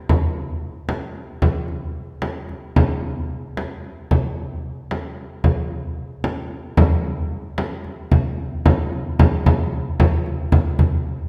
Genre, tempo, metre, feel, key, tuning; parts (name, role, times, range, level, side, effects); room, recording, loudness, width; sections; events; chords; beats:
contemporary instrumental, contemporary; 224 BPM (eighths); 5/8; straight
frame drum; percussion; 0.1-11.0 s; -21 LUFS; equal
wet recital hall reverb, RT60 1.9 s; recorded in a church or concert hall; -21 LUFS; mono
0.0-8.1 A section; 8.1-11.3 B section
| 0.10 0.36 0.63 0.89 1.16 | 1.42 1.69 1.95 2.22 2.49 | 2.76 3.03 3.30 3.57 3.84 | 4.11 4.38 4.64 4.91 5.17 | 5.44 5.71 5.97 6.24 6.51 | 6.77 7.04 7.31 7.58 7.85 | 8.12 8.39 8.66 8.93 9.19 | 9.46 9.73 10.00 10.27 10.53 | 10.80